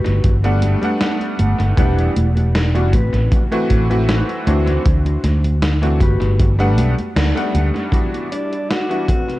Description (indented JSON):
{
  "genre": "vaporwave",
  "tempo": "78 BPM",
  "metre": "4/4",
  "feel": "swing 54% on 16ths",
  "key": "unclear",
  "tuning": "A4 = 439 Hz",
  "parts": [
    { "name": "mellow electric guitar", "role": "riff", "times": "0.0-9.4 s", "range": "C4 to F#5", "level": "-28 LUFS", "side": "left 1 dB", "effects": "lush chorus, vintage 12-bit sampler grit, low-pass filter, analog delay" },
    { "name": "fretless electric bass", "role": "bass", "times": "0.1-7.7 s", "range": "E1 to D2", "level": "-16 LUFS", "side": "equal", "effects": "tube saturation" },
    { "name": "gated 80s digital drum machine", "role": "drums", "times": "0.1-9.4 s", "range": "congas, hi-hat, snare drum", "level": "-23 LUFS", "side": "equal", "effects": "gated reverb, gated reverb snare, analog delay" },
    { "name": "kick drum", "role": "drums", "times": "0.2-9.2 s", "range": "none", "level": "-17 LUFS", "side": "equal", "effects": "none" },
    { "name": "bright electric grand piano", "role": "accompaniment", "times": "0.4-9.1 s", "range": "E3 to F#5", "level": "-21 LUFS", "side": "equal", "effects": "wide subtle chorus, vintage 12-bit sampler grit, analog delay" },
    { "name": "dark studio string section", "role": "sustained chords", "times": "7.9-9.4 s", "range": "C3 to D5", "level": "-33 LUFS", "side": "left 1 dB", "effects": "low-pass filter" },
    { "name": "warm alto saxophone", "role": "melody", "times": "8.3-9.4 s", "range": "D4 to F#4", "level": "-22 LUFS", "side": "equal", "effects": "vintage 12-bit sampler grit, analog delay" }
  ],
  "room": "light reverb, small room ambience",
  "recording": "echo-heavy mix, cassette tape",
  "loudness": "-14 LUFS",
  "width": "side -17 dB against mid",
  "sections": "0.0-7.9 A section; 7.9-9.4 B section",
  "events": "clean electric guitar fill 6.8-7.9; band accent 7.2-7.5",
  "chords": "0.0 Gmaj7; 1.8 Em7; 2.9 Am69; 4.5 D7; 6.0 Gmaj7; 7.9 Em7"
}